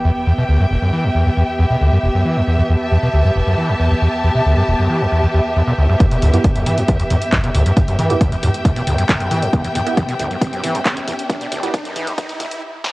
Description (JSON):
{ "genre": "driving peak-time techno", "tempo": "136 BPM", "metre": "4/4", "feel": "straight", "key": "E minor", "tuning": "A4 = 439 Hz", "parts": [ { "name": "screaming distorted acid line", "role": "riff", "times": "0.0-12.5 s", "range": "E1 to E3", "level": "-16 LUFS", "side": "equal", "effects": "distortion, chorus, sidechain pumping, cassette tape, analog delay" }, { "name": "sub drop and riser", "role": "sound effects", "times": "0.0-0.7, 7.3-12.6 s", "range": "none", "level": "-31 LUFS", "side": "right 1 dB", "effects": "none" }, { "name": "clear studio string section", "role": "texture", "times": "0.0-12.6 s", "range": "B3 to A5", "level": "-21 LUFS", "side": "equal", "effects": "sidechain pumping, cassette tape" }, { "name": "electronic kick drum", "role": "drums", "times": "6.0-12.3 s", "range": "none", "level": "-16 LUFS", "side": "equal", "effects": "overdrive, cassette tape" }, { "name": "punchy analog drum machine", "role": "drums", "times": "6.0-12.9 s", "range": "handclaps, hi-hat, snare drum, toms", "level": "-23 LUFS", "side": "equal", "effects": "sidechain pumping on hats, cassette tape, sidechain pumping on toms" }, { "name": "filtered dub chord stab", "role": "stabs", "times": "6.3-11.7 s", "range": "B3 to G4", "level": "-24 LUFS", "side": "right 4 dB", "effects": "wide subtle chorus, sidechain pumping, cassette tape, analog delay" } ], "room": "moderate booth ambience, RT60 0.2 s", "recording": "home recording on cassette, high-pass filter", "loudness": "-14 LUFS", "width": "side -21 dB against mid", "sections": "0.0-6.0 A section; 6.0-12.9 B section", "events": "impact 0.0-0.7; build-up 6.0-12.9; filter sweep on acid bass 6.0-12.9; filter sweep 6.0-12.9; riser 7.3-12.6", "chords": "0.0 Em" }